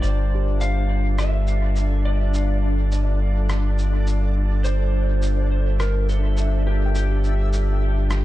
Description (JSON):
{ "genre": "ambient dub", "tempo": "104 BPM", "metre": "4/4", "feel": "swing 60% on 16ths", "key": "unclear", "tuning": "A4 = 440 Hz", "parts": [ { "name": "electric slide guitar", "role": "melody", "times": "0.0-8.2 s", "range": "G4 to F5", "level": "-31 LUFS", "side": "right 1 dB", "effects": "dub echo" }, { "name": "airy breathy pad", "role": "sustained chords", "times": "0.0-8.2 s", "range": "G3 to Bb4", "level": "-30 LUFS", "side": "right 3 dB", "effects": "chorus" }, { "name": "handpan", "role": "arpeggios", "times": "0.0-8.2 s", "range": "G4 to G5", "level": "-38 LUFS", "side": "right 3 dB", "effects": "dub echo" }, { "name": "soft dub sub bass", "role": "bass", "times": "0.0-8.2 s", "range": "G1", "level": "-20 LUFS", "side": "equal", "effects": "none" }, { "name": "electronic cabasa and rim click", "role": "drums", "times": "0.0-8.2 s", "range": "none", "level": "-35 LUFS", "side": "equal", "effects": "dub echo" }, { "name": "backwards swelling texture", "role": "texture", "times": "0.0-8.2 s", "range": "D4 to E5", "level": "-33 LUFS", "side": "left 1 dB", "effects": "built-in reverb" } ], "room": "little or no reverb", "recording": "echo-heavy mix, nothing above 10.8 kHz", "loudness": "-18 LUFS", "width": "side -15 dB against mid", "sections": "0.0-8.2 A section", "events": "filter sweep on handpan 0.0-8.2", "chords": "0.0 Gm7" }